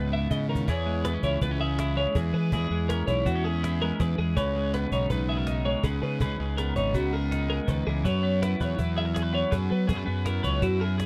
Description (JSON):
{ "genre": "math rock and midwest emo", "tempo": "163 BPM", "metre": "5/4", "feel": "straight", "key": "unclear", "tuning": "A4 = 445 Hz", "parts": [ { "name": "twelve-string electric guitar", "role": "accompaniment", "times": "0.0-11.1 s", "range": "G#2 to B4", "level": "-32 LUFS", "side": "equal", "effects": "subtle chorus" }, { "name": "twelve-string electric guitar", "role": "arpeggios", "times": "0.0-11.1 s", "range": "F#4 to E5", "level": "-33 LUFS", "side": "equal", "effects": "none" }, { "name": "fuzz fingered electric bass", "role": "bass", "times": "0.0-11.1 s", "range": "G#1 to F#3", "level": "-30 LUFS", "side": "equal", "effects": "overdrive" }, { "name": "cajon", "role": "drums", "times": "0.1-11.1 s", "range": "none", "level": "-34 LUFS", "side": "equal", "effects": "none" } ], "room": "little or no reverb", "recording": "dry, close 1970s-style studio recording", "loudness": "-27 LUFS", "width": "mono", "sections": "0.7-11.1 A section", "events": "drum fill 0.3-0.7", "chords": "0.0 C#m7; 0.7 E6; 4.4 C#m9; 8.1 F#7sus4", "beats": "0.30 | 0.67 1.04 1.41 1.78 2.15 | 2.52 2.89 3.26 3.62 3.99 | 4.36 4.73 5.10 5.47 5.84 | 6.21 6.58 6.95 7.31 7.68 | 8.05 8.42 8.79 9.15 9.52 | 9.89 10.26 10.62 10.99" }